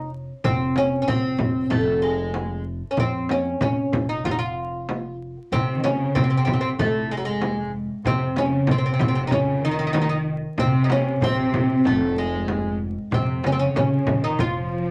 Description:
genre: Arabic maqam ensemble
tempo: 95 BPM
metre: 4/4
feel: straight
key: F maqam saba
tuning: A4 = 439 Hz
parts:
  - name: oud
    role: melody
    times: 0.0-14.9 s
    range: Gb3+50c to F4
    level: -26 LUFS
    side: equal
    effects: none
  - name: upright bass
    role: bass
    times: 0.0-14.9 s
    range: F1 to F2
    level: -33 LUFS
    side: equal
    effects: none
  - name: darbuka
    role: percussion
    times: 0.4-14.9 s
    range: none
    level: -31 LUFS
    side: equal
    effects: none
  - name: frame drum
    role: percussion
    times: 0.4-14.5 s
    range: none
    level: -29 LUFS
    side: equal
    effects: none
  - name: warm symphonic cello section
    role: second line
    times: 5.5-14.9 s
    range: Ab2 to F3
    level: -27 LUFS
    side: equal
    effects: none
room: moderate studio ambience, RT60 0.5 s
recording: vinyl crackle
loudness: -23 LUFS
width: mono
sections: 0.0-5.5 A section; 5.5-14.9 A section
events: none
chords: none

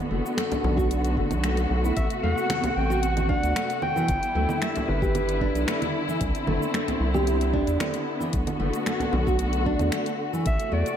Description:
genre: organic downtempo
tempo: 113 BPM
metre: 4/4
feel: straight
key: unclear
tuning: A4 = 440 Hz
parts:
  - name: muted studio string section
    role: sustained chords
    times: 0.0-11.0 s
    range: C3 to F#4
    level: -28 LUFS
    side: left 1 dB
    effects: sidechain pumping
  - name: afro-pop drum kit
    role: drums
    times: 0.0-11.0 s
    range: congas, finger snaps, hi-hat, shaker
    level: -33 LUFS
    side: right 3 dB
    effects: none
  - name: nylon-string guitar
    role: arpeggios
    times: 0.1-10.9 s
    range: E3 to G4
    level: -29 LUFS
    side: equal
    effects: low-pass filter, ping-pong delay
  - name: round analog bass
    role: bass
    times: 0.1-10.8 s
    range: F#1 to E2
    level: -26 LUFS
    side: equal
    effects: none
  - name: frame drum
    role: percussion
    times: 0.5-9.2 s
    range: none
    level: -33 LUFS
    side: left 1 dB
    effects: none
  - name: electronic kick drum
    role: drums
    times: 0.8-10.6 s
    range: none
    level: -29 LUFS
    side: equal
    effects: none
  - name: breathy clarinet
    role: melody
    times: 2.0-5.9, 10.5-11.0 s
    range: B4 to G5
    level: -29 LUFS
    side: equal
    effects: ping-pong delay
room: moderate plate reverb, RT60 1.9 s, small room ambience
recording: dreamy mix soaked in reverb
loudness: -22 LUFS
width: side -9 dB against mid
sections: 0.0-10.5 A section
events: break 9.9-10.5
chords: 0.0 Bm7; 2.0 Am69; 4.1 G6; 6.2 Cmaj9; 8.3 Bm7; 10.5 Am6

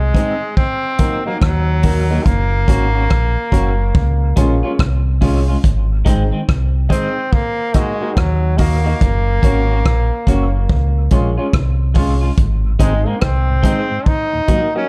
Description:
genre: roots reggae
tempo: 71 BPM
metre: 4/4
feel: swing 64% on 16ths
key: Ab mixolydian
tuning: A4 = 441 Hz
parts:
  - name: brilliant trombone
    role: melody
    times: 0.0-14.9 s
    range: Gb3 to Eb4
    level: -23 LUFS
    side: equal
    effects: tape echo
  - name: deep dub fingered electric bass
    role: bass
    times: 0.0-13.6 s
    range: Gb1 to Eb2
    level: -18 LUFS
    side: equal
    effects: none
  - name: clean electric guitar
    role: accompaniment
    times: 0.1-14.8 s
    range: Eb3 to Gb4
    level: -26 LUFS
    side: equal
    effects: tape echo
  - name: clear upright piano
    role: stabs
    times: 0.1-14.9 s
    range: Ab3 to Eb5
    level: -28 LUFS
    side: equal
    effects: none
  - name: vintage drum kit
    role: drums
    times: 0.1-14.7 s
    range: hi-hat, kick drum, rim click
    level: -19 LUFS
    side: equal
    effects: none
  - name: mellow tonewheel organ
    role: accompaniment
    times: 12.7-14.6 s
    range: Eb2 to Eb4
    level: -27 LUFS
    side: equal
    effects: slow rotary speaker
room: small room reverb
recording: dark, warm production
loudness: -16 LUFS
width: mono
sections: 0.0-14.9 A section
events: none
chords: 0.0 Ab; 0.6 Ebm; 2.3 Gb; 3.9 Db; 5.6 Ab; 7.3 Ebm; 9.0 Gb; 10.7 Db; 12.4 Ab; 14.1 Ebm

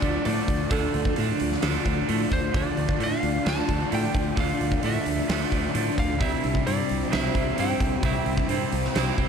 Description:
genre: rock, shoegaze and dream pop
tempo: 131 BPM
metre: 4/4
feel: straight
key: D minor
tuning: A4 = 440 Hz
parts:
  - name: lightly driven lead guitar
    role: melody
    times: 0.0-8.5 s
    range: A4 to A5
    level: -32 LUFS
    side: right 1 dB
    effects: slapback echo
  - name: ethereal airy pad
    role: sustained chords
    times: 0.0-9.3 s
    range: D4 to G5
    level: -31 LUFS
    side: right 1 dB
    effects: ensemble chorus, built-in reverb
  - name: biting overdriven guitar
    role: riff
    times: 0.0-9.3 s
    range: C3 to E4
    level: -30 LUFS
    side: right 12 dB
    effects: reverse reverb
  - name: thick fuzz guitar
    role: riff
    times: 0.0-9.3 s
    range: C3 to D4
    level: -30 LUFS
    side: left 9 dB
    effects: distortion, wide subtle chorus
  - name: fingered electric bass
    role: bass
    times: 0.0-9.3 s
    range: C2 to A2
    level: -29 LUFS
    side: equal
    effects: none
  - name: huge arena drum kit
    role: drums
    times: 0.0-9.3 s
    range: hi-hat, kick drum, snare drum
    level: -28 LUFS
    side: equal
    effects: none
room: light reverb, small room reverb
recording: dark, warm production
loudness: -22 LUFS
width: side -7 dB against mid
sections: 0.0-9.3 A section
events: none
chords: 0.0 Dm; 6.2 C

